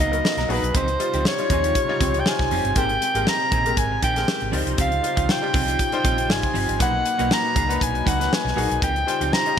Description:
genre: polished 1980s jazz-funk pop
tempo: 119 BPM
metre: 4/4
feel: swing 54% on 16ths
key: unclear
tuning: A4 = 441 Hz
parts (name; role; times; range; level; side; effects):
- breathy soprano saxophone; melody; 0.0-9.6 s; B4 to Bb5; -23 LUFS; equal; ping-pong delay
- bright concert grand piano; accompaniment; 0.0-9.6 s; A#2 to Eb5; -27 LUFS; left 4 dB; lush chorus
- warm analog pad; sustained chords; 0.0-9.6 s; C3 to B4; -34 LUFS; right 1 dB; chorus, phaser
- clean electric guitar; riff; 0.0-9.6 s; Eb3 to A#4; -30 LUFS; right 4 dB; ensemble chorus
- hollow-body short-scale fingered electric bass; bass; 0.0-9.3 s; F1 to Eb2; -27 LUFS; right 1 dB; none
- modern studio drum kit; drums; 0.0-9.6 s; hi-hat, kick drum, snare drum; -24 LUFS; equal; none
room: moderate lush hall reverb, RT60 2.1 s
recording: bright 1980s-style digital production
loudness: -19 LUFS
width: side -8 dB against mid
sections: 0.0-9.6 A section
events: none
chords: 0.0 Bmaj7; 0.7 Dbmaj9#11; 2.8 Abmaj9; 4.5 Dbmaj9#11; 6.8 Bmaj7; 8.8 Dbmaj9#11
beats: 0.24 | 0.74 1.25 1.75 2.26 | 2.77 3.27 3.77 4.28 | 4.78 5.29 5.79 6.30 | 6.80 7.31 7.81 8.32 | 8.82 9.32

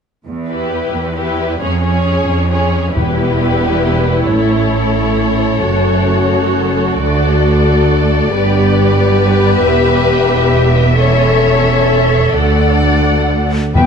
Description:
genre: cinematic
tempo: 89 BPM (dotted quarters)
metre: 6/8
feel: straight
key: E dorian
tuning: A4 = 440 Hz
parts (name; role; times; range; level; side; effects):
- rich symphonic cello section; bass; 0.3-13.9 s; D2 to A2; -18 LUFS; right 2 dB; none
- warm symphonic violin section; melody; 0.5-13.8 s; B4 to F#5; -20 LUFS; left 3 dB; none
- warm studio violin section; second line; 0.5-13.9 s; G4 to D5; -19 LUFS; left 3 dB; none
- rich symphonic viola section; accompaniment; 0.5-13.8 s; G3 to B4; -19 LUFS; right 1 dB; none
- mellow French horn section; sustained chords; 3.0-13.9 s; G3 to A4; -18 LUFS; left 5 dB; none
- clear symphonic double bass section; bass; 3.0-13.9 s; E1 to D2; -16 LUFS; right 2 dB; none
- timpani; percussion; 3.0-3.6, 13.8-13.9 s; E2; -18 LUFS; equal; none
- bright concert flute; second line; 13.8-13.9 s; G5; -18 LUFS; left 3 dB; none
- mellow clarinet; second line; 13.8-13.9 s; B3; -14 LUFS; left 5 dB; none
room: light reverb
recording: dark, warm production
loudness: -11 LUFS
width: side -6 dB against mid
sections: 0.3-3.0 A section; 3.0-13.7 B section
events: build-up 3.0-13.7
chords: 0.3 Em; 1.6 C#/E#; 3.0 Em; 4.3 A; 5.7 F#m; 7.0 D; 8.3 G; 9.7 Em; 11.0 A/E; 12.4 D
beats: | 0.26 0.93 | 1.61 2.28 | 2.97 3.65 | 4.32 4.99 | 5.66 6.33 | 7.00 7.66 | 8.33 8.99 | 9.65 10.32 | 10.99 11.67 | 12.36 13.06 | 13.75

